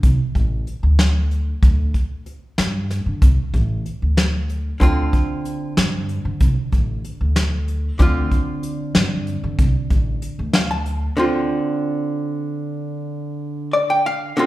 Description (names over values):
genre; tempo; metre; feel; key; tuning
progressive instrumental, band music in an uneven meter; 188 BPM (eighths); 5/8; straight; D minor; A4 = 440 Hz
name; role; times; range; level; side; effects
upright bass; bass; 0.0-11.1 s; A1 to D3; -20 LUFS; equal; none
soft brush drum kit; drums; 0.0-11.0 s; hi-hat, kick drum, snare drum; -18 LUFS; equal; none
archtop guitar, miked and amplified; accompaniment; 4.8-14.5 s; D3 to A5; -22 LUFS; right 1 dB; none
room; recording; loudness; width
moderate recital hall reverb, RT60 1.3 s; recorded in a church or concert hall; -18 LUFS; side -16 dB against mid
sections
0.0-11.2 A section; 11.2-14.5 B section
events
hollow-body jazz guitar fill 10.2-11.2, 13.4-14.4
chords
0.0 Dm7